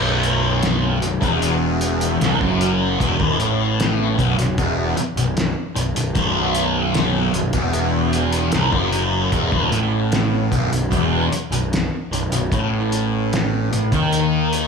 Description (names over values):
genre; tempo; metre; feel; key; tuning
psychedelic rock; 76 BPM; 4/4; straight; unclear; A4 = 438 Hz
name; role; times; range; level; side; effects
thick fuzz guitar; riff; 0.0-14.7 s; B1 to D#3; -19 LUFS; equal; distortion, phaser
fuzz picked electric bass; bass; 0.0-14.7 s; B0 to D#2; -23 LUFS; equal; overdrive
cloth-damped thuddy drum kit; drums; 0.2-14.7 s; hi-hat, kick drum, snare drum; -24 LUFS; equal; none
room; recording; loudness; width
small room ambience; small room reverb; -17 LUFS; side -5 dB against mid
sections
0.0-14.7 A section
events
none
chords
0.0 B5; 12.5 N.C.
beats
0.63 1.42 2.21 | 3.00 3.79 4.58 5.37 | 6.16 6.95 7.74 8.53 | 9.33 10.12 10.92 11.72 | 12.52 13.31 14.12